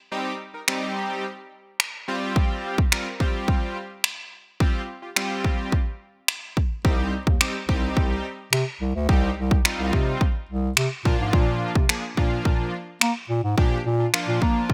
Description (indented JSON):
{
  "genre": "dance-pop",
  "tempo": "107 BPM",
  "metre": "4/4",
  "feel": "straight",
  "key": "C minor",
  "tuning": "A4 = 441 Hz",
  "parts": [
    { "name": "big bright polysynth", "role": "accompaniment", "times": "0.1-14.7 s", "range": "F3 to Bb4", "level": "-31 LUFS", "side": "equal", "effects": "analog chorus" },
    { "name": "house drum kit", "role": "drums", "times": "0.7-14.7 s", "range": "finger snaps, kick drum", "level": "-24 LUFS", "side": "equal", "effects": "overdrive, gated reverb" },
    { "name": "mellow bass clarinet", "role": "bass", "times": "6.8-14.6 s", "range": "C2 to Bb3", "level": "-27 LUFS", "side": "equal", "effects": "sidechain pumping" }
  ],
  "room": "light reverb, digital ambience",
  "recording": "bright 1980s-style digital production",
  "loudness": "-24 LUFS",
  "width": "mono",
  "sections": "0.0-14.7 A section",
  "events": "none",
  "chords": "0.0 Cm; 2.1 Fsus2; 6.8 Cm; 11.1 Bb"
}